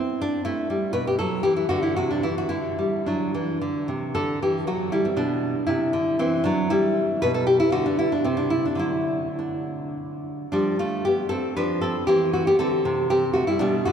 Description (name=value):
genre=classical, baroque-style dance for nylon-string guitar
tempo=103-125 BPM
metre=3/4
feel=rubato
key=G major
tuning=A4 = 439 Hz
part: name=nylon-string guitar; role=solo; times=0.0-13.9 s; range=B2 to B4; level=-21 LUFS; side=equal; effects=none
room=wet cathedral reverb, RT60 4.9 s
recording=recorded in a church or concert hall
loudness=-21 LUFS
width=side -8 dB against mid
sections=0.0-10.5 A section; 10.5-13.9 B section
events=none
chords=0.0 C; 1.0 Bmadd11; 2.0 C; 2.5 Dsus4; 3.6 Csus2; 4.2 G/D; 5.7 C; 7.2 Bmadd11; 8.2 N.C.; 8.8 D; 10.5 G7/F; 12.1 C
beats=0.47 | 0.95 1.45 1.97 | 2.50 3.06 3.62 | 4.17 4.69 5.20 | 5.70 6.21 6.72 | 7.22 7.72 8.24 | 8.80 9.38 9.96 | 10.52 11.04 11.57 | 12.10 12.62 13.13 | 13.64